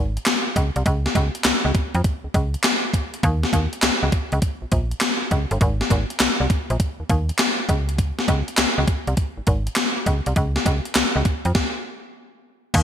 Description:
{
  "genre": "R&B, new jack swing",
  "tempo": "101 BPM",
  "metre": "4/4",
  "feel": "swing 67% on 16ths",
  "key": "unclear",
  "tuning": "A4 = 442 Hz",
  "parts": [
    { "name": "slap-like FM bass", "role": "bass", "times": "0.0-12.8 s", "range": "G1 to F2", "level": "-21 LUFS", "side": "equal", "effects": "none" },
    { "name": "gated 80s digital drum machine", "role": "drums", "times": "0.2-12.8 s", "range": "crash cymbal, handclaps, hi-hat, kick drum, snare drum", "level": "-20 LUFS", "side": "equal", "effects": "gated reverb, gated reverb snare, overdrive" }
  ],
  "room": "light reverb",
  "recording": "bright 1980s-style digital production",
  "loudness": "-19 LUFS",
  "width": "side -9 dB against mid",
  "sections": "0.0-12.7 A section",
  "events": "stop 11.6-12.7",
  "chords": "none",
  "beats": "0.26 | 0.86 1.45 2.05 2.64 | 3.23 3.83 4.42 5.02 | 5.61 6.20 6.80 7.39 | 7.99 8.58 9.17 9.77 | 10.36 10.96 11.55 12.14 | 12.74"
}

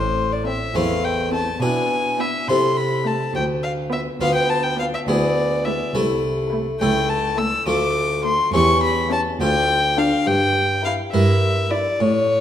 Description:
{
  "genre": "classical, baroque-style concerto movement with solo episodes",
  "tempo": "69 BPM (dotted quarters)",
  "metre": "6/8",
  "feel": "straight",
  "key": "A minor",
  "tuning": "A4 = 440 Hz",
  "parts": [
    { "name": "rich violin", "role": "melody", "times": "0.0-12.4 s", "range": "C5 to E6", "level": "-21 LUFS", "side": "left 2 dB", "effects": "none" },
    { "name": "harpsichord", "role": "accompaniment", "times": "0.0-12.4 s", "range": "C2 to B4", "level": "-21 LUFS", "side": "equal", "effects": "none" },
    { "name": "warm chamber cello section", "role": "bass", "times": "0.0-12.4 s", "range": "C2 to C3", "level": "-25 LUFS", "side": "right 2 dB", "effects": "none" },
    { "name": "warm chamber violin section", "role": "melody", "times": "0.4-11.9 s", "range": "G4 to D5", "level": "-40 LUFS", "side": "left 8 dB", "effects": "none" },
    { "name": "warm chamber violin section", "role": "second line", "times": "0.5-11.9 s", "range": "E4 to F4", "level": "-40 LUFS", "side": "left 4 dB", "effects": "none" },
    { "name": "dark chamber viola section", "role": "accompaniment", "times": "0.5-11.9 s", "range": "G#3 to E4", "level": "-28 LUFS", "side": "left 1 dB", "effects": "none" }
  ],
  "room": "wet recital hall reverb, RT60 1.7 s",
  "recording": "dark, warm production",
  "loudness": "-17 LUFS",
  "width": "side -10 dB against mid",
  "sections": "0.0-12.4 A section",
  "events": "none",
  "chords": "0.0 Am; 1.6 E7/B; 2.5 Am/C; 3.4 Bdim/D; 5.1 E7/D; 5.9 Am/C; 6.8 A/C#; 7.7 Dm; 8.5 C#dim/E; 9.4 Dm; 10.3 Edim/G",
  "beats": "0.76 | 1.62 2.49 | 3.35 4.22 | 5.08 5.94 | 6.81 7.67 | 8.53 9.39 | 10.26 11.13 | 12.01"
}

